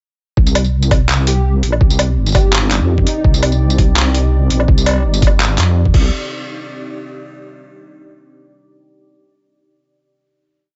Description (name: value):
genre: half-time drum and bass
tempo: 167 BPM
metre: 4/4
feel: half-time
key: C minor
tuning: A4 = 440 Hz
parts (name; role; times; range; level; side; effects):
- deep dark ambient pad; sustained chords; 2.1-7.5 s; C4 to D5; -28 LUFS; equal; chorus, built-in reverb, sidechain pumping
- deep soft wobble bass; bass; 0.4-6.1 s; G1 to F2; -16 LUFS; equal; chorus
- electronic kick drum; drums; 0.4-6.0 s; none; -15 LUFS; equal; overdrive
- boom bap sampler-style drum kit; drums; 0.5-6.0 s; crash cymbal, handclaps, hi-hat, tambourine, woodblock; -21 LUFS; equal; overdrive
- airy dreamy lead; melody; 1.3-3.2 s; Eb4 to G4; -27 LUFS; equal; chorus, tape echo
room: little or no reverb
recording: nothing above 7.9 kHz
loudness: -14 LUFS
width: mono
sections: 0.4-6.1 drop; 6.1-7.6 final chord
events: drop 0.4-6.1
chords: 0.4 Cmadd9; 5.9 Cm; 6.1 Cmadd9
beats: | 0.37 0.73 1.09 1.45 | 1.81 2.17 2.53 2.89 | 3.25 3.61 3.96 4.32 | 4.68 5.04 5.40 5.76 | 6.12 6.48 6.84 7.20